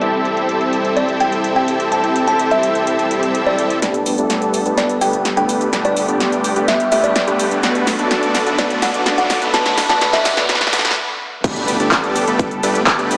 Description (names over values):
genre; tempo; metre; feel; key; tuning
EDM, festival progressive house; 126 BPM; 4/4; straight; G major; A4 = 439 Hz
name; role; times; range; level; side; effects
lush unison pad; sustained chords; 0.0-13.2 s; D3 to B4; -25 LUFS; equal; chorus, sidechain pumping
dense compressed supersaw; riff; 0.0-13.2 s; A3 to E5; -21 LUFS; equal; sidechain pumping, low-pass filter, tape echo
big-room dance drum kit; drums; 0.0-13.2 s; crash cymbal, handclaps, hi-hat, shaker, snare drum; -22 LUFS; equal; low-pass filter on hats, small room ambience, low-pass filter on snare, low-pass filter on perc, low-pass filter on cymbals
kalimba; melody; 1.0-10.5 s; D5 to A5; -22 LUFS; equal; tape echo
swell, riser and impact; sound effects; 3.0-13.2 s; none; -29 LUFS; equal; none
fat analog bass; bass; 3.8-13.2 s; G1 to G2; -29 LUFS; equal; none
electronic kick drum; drums; 11.4-13.0 s; none; -24 LUFS; equal; small room ambience
room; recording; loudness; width
wet concert hall reverb, RT60 1.8 s, digital ambience; high-pass filter, low-pass filter, small speaker sound; -17 LUFS; mono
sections
0.0-3.8 A section; 3.8-11.4 B section; 11.4-13.2 C section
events
swell 3.0-3.8; build-up 3.8-11.4; drum fill 3.8-11.0; riser 3.8-11.0; filter sweep on supersaw synth 3.8-11.4; filter sweep 3.8-11.4; stop 11.0-11.4; drop 11.4-13.2; impact 11.4-13.2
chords
0.0 Am7; 3.8 Gadd9; 7.6 Bm7; 11.4 Gadd9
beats
| 0.01 0.49 0.97 1.44 | 1.92 2.40 2.87 3.35 | 3.82 4.30 4.78 5.25 | 5.73 6.20 6.68 7.16 | 7.63 8.11 8.59 9.06 | 9.54 10.01 10.49 10.97 | 11.44 11.92 12.39 12.87